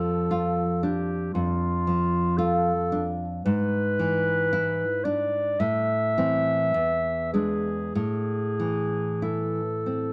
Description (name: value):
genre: romantic duo for clarinet and classical guitar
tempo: 47-58 BPM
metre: 4/4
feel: rubato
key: A minor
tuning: A4 = 440 Hz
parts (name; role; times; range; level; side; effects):
- dark clarinet; melody; 0.0-10.1 s; F4 to E5; -29 LUFS; equal; none
- nylon-string guitar; accompaniment; 0.0-10.1 s; E2 to F4; -28 LUFS; equal; none
room: light reverb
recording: none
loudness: -26 LUFS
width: mono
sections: 0.0-10.1 A section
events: none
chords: 0.0 Dm/F; 3.5 E7/G#; 5.6 Am; 6.7 E7; 8.0 Am